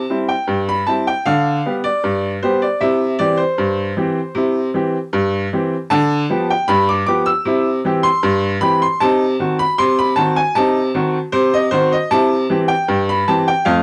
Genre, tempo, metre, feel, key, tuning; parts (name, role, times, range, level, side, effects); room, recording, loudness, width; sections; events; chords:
ragtime piano; 77 BPM; 2/4; straight; C major; A4 = 440 Hz
clear upright piano; solo; 0.0-13.8 s; F2 to E6; -17 LUFS; equal; cassette tape
light reverb; home recording on cassette; -17 LUFS; mono
0.0-13.8 A section
0.0 C; 1.3 G/D; 2.8 C; 5.9 G7/D; 7.5 C; 9.0 Cdim7; 12.1 C